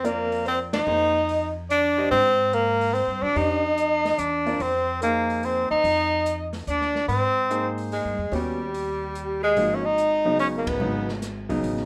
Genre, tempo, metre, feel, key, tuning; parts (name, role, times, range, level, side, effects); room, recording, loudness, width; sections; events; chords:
modal jazz; 145 BPM; 3/4; swing 66% on 8ths; F dorian; A4 = 436 Hz
warm tenor saxophone; melody; 0.0-11.1 s; G3 to Eb4; -25 LUFS; equal
breathy alto saxophone; second line; 0.0-11.1 s; G4 to Eb5; -32 LUFS; equal
clear concert grand piano; accompaniment; 0.0-11.9 s; C#3 to Eb5; -31 LUFS; equal
upright bass; bass; 0.0-11.9 s; G#1 to Ab2; -35 LUFS; equal
open jazz drum kit; drums; 0.0-11.9 s; hi-hat, kick drum, ride cymbal, snare drum; -40 LUFS; equal
wet club reverb, RT60 0.8 s; -24 LUFS; mono
0.0-9.6 A section; 9.6-11.9 B section
band accent 0.7, 10.6
0.0 Fm7; 8.3 Eb7alt; 9.6 G#m